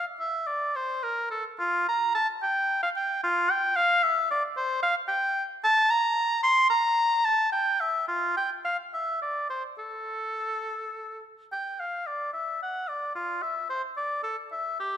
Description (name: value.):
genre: classical, baroque-style fantasia for unaccompanied oboe.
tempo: 68-76 BPM (dotted quarters).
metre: 6/8.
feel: rubato.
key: D minor.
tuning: A4 = 440 Hz.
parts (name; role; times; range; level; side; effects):
warm oboe; solo; 0.0-15.0 s; F4 to C6; -24 LUFS; equal; none.
room: moderate recital hall reverb, RT60 1.8 s.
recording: none.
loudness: -24 LUFS.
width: side -10 dB against mid.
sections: 0.0-11.5 A section; 11.5-15.0 B section.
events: none.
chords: none.